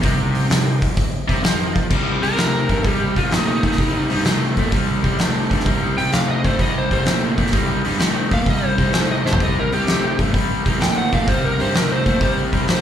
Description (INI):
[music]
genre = blues rock power trio and southern rock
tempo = 128 BPM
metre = 4/4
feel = swing 68% on 8ths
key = C minor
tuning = A4 = 442 Hz
[part]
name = overdriven tonewheel organ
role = sustained chords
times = 0.0-12.8 s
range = Eb4 to Eb5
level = -33 LUFS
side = right 5 dB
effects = none
[part]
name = overdriven electric guitar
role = riff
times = 0.0-12.8 s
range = C3 to A3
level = -22 LUFS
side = equal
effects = none
[part]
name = fuzz picked electric bass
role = bass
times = 0.0-12.8 s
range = C2 to C3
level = -23 LUFS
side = equal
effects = overdrive
[part]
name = oversized low-tuned drum kit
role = drums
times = 0.0-12.8 s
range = crash cymbal, hi-hat, kick drum, snare drum, toms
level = -20 LUFS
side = equal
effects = none
[part]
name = overdriven slide guitar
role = melody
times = 2.2-12.8 s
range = Eb4 to G5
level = -24 LUFS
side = equal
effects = slapback echo
[sound]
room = small room reverb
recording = live gig heard through the venue's PA, club reverb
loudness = -16 LUFS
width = side -9 dB against mid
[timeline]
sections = 0.0-1.9 A section; 1.9-12.8 B section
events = electric slide guitar solo 1.9-12.8; drum fill 9.2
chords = 0.0 Cm